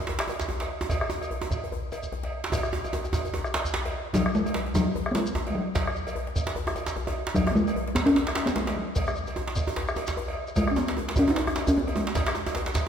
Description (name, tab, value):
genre	west african traditional, West African drum ensemble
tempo	149 BPM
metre	4/4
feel	swing 57% on 16ths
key	unclear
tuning	A4 = 442 Hz
part	djembe	percussion	0.0-12.8 s	none	-34 LUFS	left 3 dB	none
part	djembe	percussion	0.1-12.9 s	none	-32 LUFS	right 3 dB	none
part	bombo	percussion	0.2-12.9 s	none	-32 LUFS	right 1 dB	none
part	cowbell	percussion	0.3-12.9 s	none	-36 LUFS	right 3 dB	none
part	shekere	percussion	0.3-12.9 s	none	-40 LUFS	left 2 dB	none
part	talking drum	melody	4.1-12.8 s	F#3 to D#4	-25 LUFS	left 1 dB	none
room	wet scoring stage reverb, RT60 1.9 s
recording	none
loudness	-25 LUFS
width	side -8 dB against mid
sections	0.0-4.1 A section; 4.1-12.9 B section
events	drum fill 2.5-4.1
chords	none